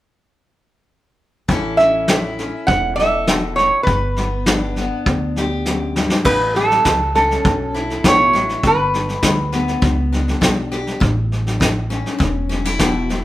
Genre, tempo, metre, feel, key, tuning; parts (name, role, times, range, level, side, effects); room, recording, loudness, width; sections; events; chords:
honky-tonk and classic country; 101 BPM; 4/4; straight; A mixolydian; A4 = 440 Hz
picked steel-string acoustic guitar; accompaniment; 1.5-13.2 s; F#2 to A4; -24 LUFS; left 3 dB
upright bass; bass; 1.5-13.2 s; E1 to D2; -23 LUFS; equal
vintage brush drum kit; drums; 1.5-13.2 s; crash cymbal, hi-hat, kick drum, snare drum; -19 LUFS; equal
lap resonator guitar; melody; 1.8-9.8 s; A4 to F#5; -16 LUFS; right 1 dB
moderate studio reverb, RT60 0.7 s; band playing live in one room; -15 LUFS; side -15 dB against mid
1.5-6.3 A section; 6.3-13.2 B section
drum fill 5.7-6.3
1.5 A; 3.9 G; 6.3 A; 8.6 G; 11.0 A